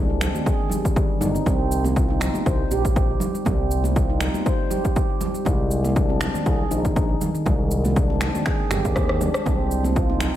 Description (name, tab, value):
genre	afro house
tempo	120 BPM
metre	4/4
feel	swing 55% on 16ths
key	unclear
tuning	A4 = 439 Hz
part	handpan	arpeggios	0.0-10.2 s	Eb3 to C5	-25 LUFS	right 1 dB	sidechain pumping, dub echo
part	smooth synth bass	bass	0.0-10.3 s	G1 to Eb2	-24 LUFS	equal	sidechain pumping
part	electronic finger snaps, shaker and rim click	drums	0.2-10.3 s	none	-30 LUFS	equal	overdrive
part	congas	percussion	0.2-10.3 s	none	-30 LUFS	right 3 dB	none
part	electronic kick drum	drums	0.5-10.1 s	none	-23 LUFS	equal	overdrive
room	light reverb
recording	none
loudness	-19 LUFS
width	side -12 dB against mid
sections	0.0-10.4 A section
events	drum fill 9.0-9.5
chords	0.0 Ab (rootless); 1.5 C7(no3); 5.5 Abadd9; 9.5 N.C.